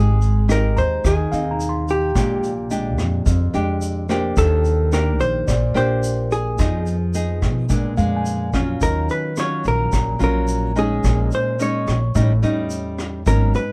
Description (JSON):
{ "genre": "bossa nova", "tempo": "108 BPM", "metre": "4/4", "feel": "straight", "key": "unclear", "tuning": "A4 = 440 Hz", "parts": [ { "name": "vintage hollow-body jazz guitar", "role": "melody", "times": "0.0-13.7 s", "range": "G4 to Db5", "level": "-26 LUFS", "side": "equal", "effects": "none" }, { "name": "nylon-string guitar", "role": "accompaniment", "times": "0.0-13.7 s", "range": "F2 to Ab4", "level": "-25 LUFS", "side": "equal", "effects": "none" }, { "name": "upright bass", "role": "bass", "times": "0.0-13.5 s", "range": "Ab1 to Cb3", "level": "-23 LUFS", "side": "equal", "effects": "none" }, { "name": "vintage brush drum kit", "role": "drums", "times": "0.2-13.7 s", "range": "hi-hat, kick drum, rim click", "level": "-27 LUFS", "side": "equal", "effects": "none" }, { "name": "tube shaker", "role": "percussion", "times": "0.2-13.7 s", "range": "none", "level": "-41 LUFS", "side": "equal", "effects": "none" }, { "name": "tine electric piano", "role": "accompaniment", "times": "0.8-9.2 s", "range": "C5 to C6", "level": "-34 LUFS", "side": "equal", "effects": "none" } ], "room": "little or no reverb", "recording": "dark, warm production", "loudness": "-20 LUFS", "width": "mono", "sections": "0.0-8.8 A section; 8.8-13.7 B section", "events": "none", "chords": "0.0 Abmaj7; 2.2 Bb13; 4.4 Ebmaj7; 6.6 Fm7b5; 7.7 Bb7b9; 8.8 Ebm9; 11.0 Bbm7; 12.2 A7#11" }